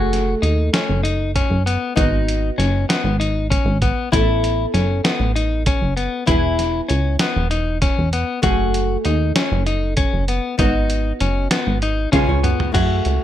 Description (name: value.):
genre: progressive instrumental, band music in an uneven meter.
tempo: 195 BPM (eighths).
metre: 7/8.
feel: straight.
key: F# dorian.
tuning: A4 = 440 Hz.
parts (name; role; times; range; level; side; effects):
hollow-body jazz guitar; accompaniment; 0.0-13.2 s; A3 to E#5; -24 LUFS; equal; double-tracked left and right, plate reverb.
clean electric guitar; arpeggios; 0.0-13.2 s; B3 to F#4; -22 LUFS; left 5 dB; plate reverb.
plucky analog bass; bass; 0.0-13.2 s; E1 to F#2; -20 LUFS; right 1 dB; none.
dusty soul sampler-style drum kit; drums; 0.1-13.2 s; crash cymbal, hi-hat, kick drum, snare drum, toms; -21 LUFS; right 1 dB; none.
room: little or no reverb.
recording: faint mains hum.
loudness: -16 LUFS.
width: side -11 dB against mid.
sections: 0.0-12.7 A section.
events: hollow-body jazz guitar fill 11.8-12.7; drum fill 12.1-12.7.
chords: 0.0 F#madd9; 2.0 G#m7; 4.1 Asus2; 6.3 E; 8.4 F#madd9; 10.6 G#m7; 12.1 C#7.